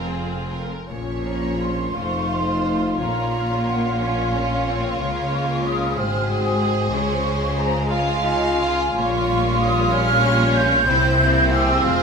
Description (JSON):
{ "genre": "classical, slow romantic movement for symphony orchestra", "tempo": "46-64 BPM (dotted quarters)", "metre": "6/8", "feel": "rubato", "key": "Bb minor", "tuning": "A4 = 441 Hz", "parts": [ { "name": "warm symphonic violin section", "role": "melody", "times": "0.0-12.0 s", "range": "Ab4 to F5", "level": "-30 LUFS", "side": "equal", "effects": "none" }, { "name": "warm symphonic violin section", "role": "second line", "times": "0.0-12.0 s", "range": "Db4 to Ab4", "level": "-29 LUFS", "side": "right 2 dB", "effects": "none" }, { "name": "rich symphonic viola section", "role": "accompaniment", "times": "0.0-12.0 s", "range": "F3 to Db4", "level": "-29 LUFS", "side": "right 1 dB", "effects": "none" }, { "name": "concert harp", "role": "arpeggios", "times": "0.0-12.0 s", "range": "F2 to F5", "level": "-32 LUFS", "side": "left 6 dB", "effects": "none" }, { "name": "rich studio double bass section", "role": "bass", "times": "0.0-12.0 s", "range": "F1 to Db2", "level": "-27 LUFS", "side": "right 1 dB", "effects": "none" }, { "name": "rich symphonic cello section", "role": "bass", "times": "0.0-12.0 s", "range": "F2 to Db3", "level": "-26 LUFS", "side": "equal", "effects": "none" }, { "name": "warm French horn section", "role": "sustained chords", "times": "0.9-12.0 s", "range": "F3 to Gb4", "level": "-27 LUFS", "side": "left 2 dB", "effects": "none" }, { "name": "flute section", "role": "second line", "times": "1.3-12.0 s", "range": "F5 to G6", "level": "-23 LUFS", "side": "right 1 dB", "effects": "none" }, { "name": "warm bassoon", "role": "accompaniment", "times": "1.9-12.0 s", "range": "C4 to G4", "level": "-27 LUFS", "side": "right 1 dB", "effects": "none" } ], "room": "wet stone room reverb, RT60 1.2 s", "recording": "none", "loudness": "-18 LUFS", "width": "side -5 dB against mid", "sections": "0.9-12.0 A section", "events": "none", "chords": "0.0 Fm; 0.9 Bbm; 2.0 F7; 3.0 Bbm; 5.0 Db; 6.0 Ab7; 6.9 Db; 9.0 Gm7b5/Bb; 10.9 C7" }